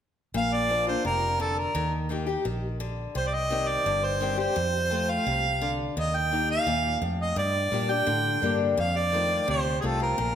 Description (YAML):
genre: country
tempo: 171 BPM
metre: 4/4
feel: straight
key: Bb major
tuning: A4 = 440 Hz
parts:
  - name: picked steel-string acoustic guitar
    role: accompaniment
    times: 0.3-10.3 s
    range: F2 to G4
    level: -29 LUFS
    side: left 5 dB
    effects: none
  - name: vintage muted fingered electric bass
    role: bass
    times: 0.3-10.3 s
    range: F1 to Bb2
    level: -31 LUFS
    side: right 1 dB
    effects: none
  - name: warm harmonica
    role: melody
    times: 0.4-10.3 s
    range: Ab4 to G5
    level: -26 LUFS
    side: right 2 dB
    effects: none
room: wet recital hall reverb, RT60 1.6 s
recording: none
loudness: -24 LUFS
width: side -9 dB against mid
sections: 0.3-10.3 A section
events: none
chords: 0.3 Bb; 1.8 Eb; 3.2 Cm; 4.6 F; 6.0 Eb; 7.4 Gm; 8.8 F7